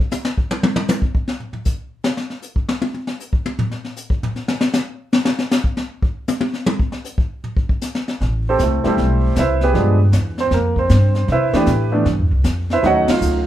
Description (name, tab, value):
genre	jazz piano trio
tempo	156 BPM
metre	4/4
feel	swing 65% on 8ths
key	unclear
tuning	A4 = 442 Hz
part	jazz brush drum kit	drums	0.1-13.5 s	brushed snare drum, hi-hat, kick drum, ride cymbal, snare drum, toms	-20 LUFS	left 1 dB	none
part	upright bass	bass	8.2-13.5 s	A1 to C3	-17 LUFS	equal	none
part	warm concert grand piano	melody	8.5-13.5 s	E3 to F#5	-17 LUFS	right 2 dB	plate reverb
room	moderate studio ambience, RT60 0.5 s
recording	heard from further back in the room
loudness	-16 LUFS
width	side -12 dB against mid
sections	0.0-8.2 A section; 8.2-13.5 B section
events	drum solo 0.0-8.2; band accent 13.0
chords	0.0 N.C.; 8.2 Am9; 9.7 G7b9; 11.3 Cmaj13; 12.8 B9 (rootless)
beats	0.12 | 0.50 0.89 1.27 1.66 | 2.05 2.43 2.82 3.20 | 3.59 3.97 4.36 4.74 | 5.13 5.51 5.90 6.28 | 6.67 7.05 7.44 7.82 | 8.21 8.59 8.98 9.36 | 9.75 10.13 10.52 10.90 | 11.29 11.67 12.06 12.44 | 12.83 13.21